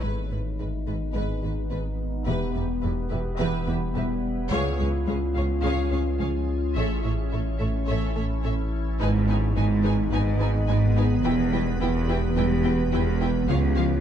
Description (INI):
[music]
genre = cinematic, hybrid orchestral and electronic film score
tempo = 107 BPM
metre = 4/4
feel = straight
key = G# phrygian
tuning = A4 = 440 Hz
[part]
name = warm symphonic violin section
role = melody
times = 0.0-13.9 s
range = D#5 to G#5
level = -38 LUFS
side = left 2 dB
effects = low-pass filter
[part]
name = clear symphonic violin section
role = second line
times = 0.0-13.8 s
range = B4 to C#5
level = -37 LUFS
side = left 1 dB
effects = none
[part]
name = rich symphonic viola section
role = accompaniment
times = 0.0-13.9 s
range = D#4 to A4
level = -37 LUFS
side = equal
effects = low-pass filter
[part]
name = dark French horn section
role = sustained chords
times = 0.0-14.0 s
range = B3 to G4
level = -33 LUFS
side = left 3 dB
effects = low-pass filter
[part]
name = organ-like drone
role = sustained chords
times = 0.0-14.0 s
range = D#3 to C#5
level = -31 LUFS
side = left 1 dB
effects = ensemble chorus, built-in reverb, phaser, low-pass filter
[part]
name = tight sequenced synth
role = arpeggios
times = 0.0-13.9 s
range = C#3 to A4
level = -34 LUFS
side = left 1 dB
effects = chorus, phaser, low-pass filter, ping-pong delay
[part]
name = clear symphonic cello section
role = bass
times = 0.0-14.0 s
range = C#2 to A2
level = -29 LUFS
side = right 2 dB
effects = none
[part]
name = rich symphonic double bass section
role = bass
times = 0.0-14.0 s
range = E1 to C#2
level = -29 LUFS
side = right 3 dB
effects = none
[part]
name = saturated sub bass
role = bass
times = 0.0-14.0 s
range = E1 to C#2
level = -29 LUFS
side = equal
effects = none
[sound]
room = light reverb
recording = dark, warm production, nothing above 11.0 kHz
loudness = -22 LUFS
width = side -9 dB against mid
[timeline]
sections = 0.0-9.0 A section; 9.0-14.0 B section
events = filter sweep 0.0-9.0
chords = 0.0 G#m; 2.3 Em; 4.5 C#; 6.8 A; 9.0 G#m; 11.2 Em; 13.5 C#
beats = | 0.03 0.59 1.15 1.71 | 2.27 2.84 3.40 3.96 | 4.52 5.08 5.64 6.20 | 6.76 7.32 7.88 8.44 | 9.00 9.56 10.12 10.69 | 11.25 11.81 12.37 12.93 | 13.49